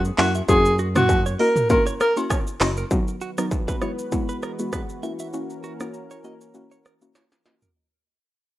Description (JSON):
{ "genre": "afrobeats", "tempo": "99 BPM", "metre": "4/4", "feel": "swing 55% on 16ths", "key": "F# mixolydian", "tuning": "A4 = 440 Hz", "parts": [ { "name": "warm alto saxophone", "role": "melody", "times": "0.0-2.1 s", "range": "F#4 to A#4", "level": "-20 LUFS", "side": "equal", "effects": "none" }, { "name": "fingered electric bass", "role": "bass", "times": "0.0-2.8 s", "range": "F#1 to F#2", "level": "-24 LUFS", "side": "equal", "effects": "none" }, { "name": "industrial drum kit", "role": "drums", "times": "0.0-7.7 s", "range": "handclaps, hi-hat, kick drum, rim click, shaker, snare drum, toms", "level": "-24 LUFS", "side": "equal", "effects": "distortion" }, { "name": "soft round pluck", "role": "accompaniment", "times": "0.2-7.7 s", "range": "F#3 to F#4", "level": "-28 LUFS", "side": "left 2 dB", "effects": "chorus" }, { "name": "direct-recorded clean electric guitar", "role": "riff", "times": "0.2-7.7 s", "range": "F#4 to E5", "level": "-34 LUFS", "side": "right 6 dB", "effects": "tape echo" }, { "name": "agogo bells and woodblock", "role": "percussion", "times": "0.2-2.8 s", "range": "none", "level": "-33 LUFS", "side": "left 3 dB", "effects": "none" }, { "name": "lush unison pad", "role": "sustained chords", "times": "3.2-7.7 s", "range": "D#3 to B4", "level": "-35 LUFS", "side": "equal", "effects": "chorus" } ], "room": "little or no reverb", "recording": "rough home demo mix", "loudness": "-19 LUFS", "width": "side -15 dB against mid", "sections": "0.0-2.9 A section; 2.9-7.8 B section", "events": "fade-out 2.9-7.8; drum fill 7.2-7.8", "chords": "0.2 F#7; 2.9 B; 3.8 Eadd9; 5.0 F#7", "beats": "| 0.48 1.09 1.70 2.30 | 2.91 3.52 4.12 4.73 | 5.33 5.94 6.55 7.15" }